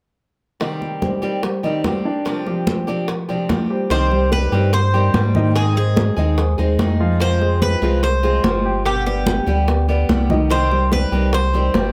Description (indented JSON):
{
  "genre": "latin, Cuban son and guajira",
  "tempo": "145 BPM",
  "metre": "4/4",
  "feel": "straight",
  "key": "C harmonic minor",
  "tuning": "A4 = 440 Hz",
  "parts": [
    { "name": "picked old ladder-braced acoustic guitar", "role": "accompaniment", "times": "0.6-11.9 s", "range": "G2 to Ab4", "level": "-28 LUFS", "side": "equal", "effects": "none" },
    { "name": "dark concert grand piano", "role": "arpeggios", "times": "0.6-11.9 s", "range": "Eb3 to G5", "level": "-25 LUFS", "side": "equal", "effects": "none" },
    { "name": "bongos", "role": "percussion", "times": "0.6-11.9 s", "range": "none", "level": "-31 LUFS", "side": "equal", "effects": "none" },
    { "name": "congas", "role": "percussion", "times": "0.6-11.9 s", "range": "none", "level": "-26 LUFS", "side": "equal", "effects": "none" },
    { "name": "Cuban tres", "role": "melody", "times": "3.9-11.9 s", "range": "G4 to C5", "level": "-24 LUFS", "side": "equal", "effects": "none" },
    { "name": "pure sine sub bass", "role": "bass", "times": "3.9-11.9 s", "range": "G1 to Ab2", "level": "-21 LUFS", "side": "equal", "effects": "none" }
  ],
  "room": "light reverb",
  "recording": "close, detailed microphones",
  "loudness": "-18 LUFS",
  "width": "mono",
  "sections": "0.6-3.9 A section; 3.9-11.9 B section",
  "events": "none",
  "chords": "0.6 Cm; 2.3 G7sus4; 3.9 Cm; 5.6 Ab; 7.2 Fm; 8.9 G; 10.5 Cm"
}